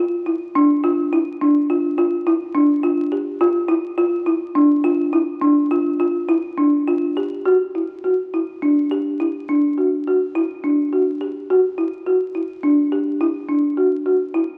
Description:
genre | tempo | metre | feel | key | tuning
contemporary instrumental, contemporary | 105 BPM | 7/4 | straight | unclear | A4 = 440 Hz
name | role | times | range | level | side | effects
folk marimba with medium mallets | solo | 0.0-14.5 s | D4 to G4 | -19 LUFS | equal | none
room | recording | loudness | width
wet recital hall reverb, RT60 1.5 s | very old 78 rpm record, vinyl crackle | -19 LUFS | mono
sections
0.0-7.5 A section; 7.5-14.6 B section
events
none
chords
none

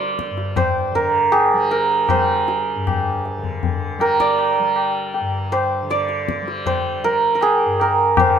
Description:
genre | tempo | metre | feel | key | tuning
indian classical, Hindustani | 79 BPM | 4/4 | straight | G raga bhairavi | A4 = 435 Hz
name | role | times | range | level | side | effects
santur | melody | 0.0-8.4 s | Ab4 to D5 | -18 LUFS | right 4 dB | none
tanpura | drone | 0.0-8.4 s | G2 to G3 | -27 LUFS | left 1 dB | none
tabla | percussion | 0.0-8.4 s | none | -22 LUFS | left 7 dB | none
room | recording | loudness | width
light reverb | none | -16 LUFS | side -8 dB against mid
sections
0.0-8.2 A section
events
none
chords
none

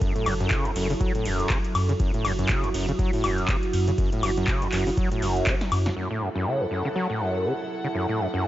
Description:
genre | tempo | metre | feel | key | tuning
acid house | 121 BPM | 4/4 | swing 57% on 16ths | F# minor pentatonic | A4 = 441 Hz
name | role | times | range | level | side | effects
warbly tape-like pad | sustained chords | 0.0-8.5 s | F#3 to A4 | -31 LUFS | right 3 dB | chorus, built-in reverb, sidechain pumping
overdriven acid bass | riff | 0.0-8.5 s | E2 to F#3 | -27 LUFS | equal | analog chorus, cassette tape, sidechain pumping, tape echo
electro analog drum machine | drums | 0.0-5.9 s | handclaps, hi-hat, ride cymbal, snare drum, woodblock | -30 LUFS | left 2 dB | overdrive, low-pass filter on hats, low-pass filter on cymbals, low-pass filter on perc, low-pass filter on snare
electronic kick drum | drums | 0.0-5.6 s | none | -26 LUFS | equal | overdrive
saturated sub bass | bass | 0.3-5.9 s | E1 to F#2 | -27 LUFS | equal | sidechain pumping
clear studio string section | texture | 6.0-8.5 s | E4 to F#5 | -31 LUFS | equal | sidechain pumping
room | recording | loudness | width
light reverb | nothing above 7.5 kHz | -22 LUFS | side -14 dB against mid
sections
0.0-6.0 A section; 6.0-8.5 B section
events
drop 0.0-6.0; drum fill 5.6-6.0; band accent 5.8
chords
0.0 F#m7

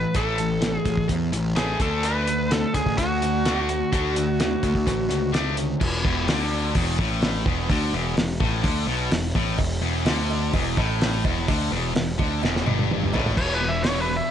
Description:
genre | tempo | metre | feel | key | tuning
classic rock | 127 BPM | 4/4 | straight | unclear | A4 = 443 Hz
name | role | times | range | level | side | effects
biting lead guitar | melody | 0.0-5.3, 13.4-14.3 s | F#4 to E5 | -26 LUFS | equal | overdrive, digital delay
sludgy distorted guitar | riff | 0.0-14.3 s | E2 to D4 | -26 LUFS | left 1 dB | overdrive
fuzz picked electric bass | bass | 0.0-14.2 s | E1 to E2 | -26 LUFS | equal | overdrive
cloth-damped thuddy drum kit | drums | 0.1-14.0 s | crash cymbal, hi-hat, kick drum, snare drum, toms | -25 LUFS | equal | none
cowbell | percussion | 9.6-13.2 s | none | -37 LUFS | right 5 dB | none
room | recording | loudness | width
light reverb | nothing above 10.7 kHz | -21 LUFS | side -9 dB against mid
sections
0.0-5.8 A section; 5.8-13.4 B section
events
drum fill 12.4-13.4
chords
0.0 A5; 1.8 D; 5.8 E5

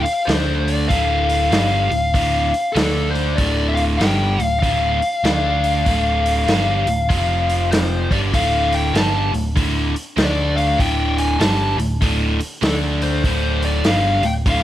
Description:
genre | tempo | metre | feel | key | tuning
blues rock power trio and southern rock | 97 BPM | 4/4 | swing 63% on 8ths | D minor | A4 = 438 Hz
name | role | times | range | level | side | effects
fuzz lead guitar | melody | 0.0-14.6 s | A4 to A5 | -21 LUFS | left 2 dB | distortion, slapback echo
biting overdriven guitar | riff | 0.0-14.6 s | D2 to D4 | -22 LUFS | right 1 dB | none
overdriven picked electric bass | bass | 0.0-14.6 s | D1 to D2 | -21 LUFS | equal | none
vintage drum kit | drums | 0.1-14.6 s | hi-hat, kick drum, snare drum | -22 LUFS | equal | none
room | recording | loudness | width
small room ambience | none | -16 LUFS | side -13 dB against mid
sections
0.0-14.6 A section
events
none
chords
0.0 Dm; 7.1 F5; 8.0 D5

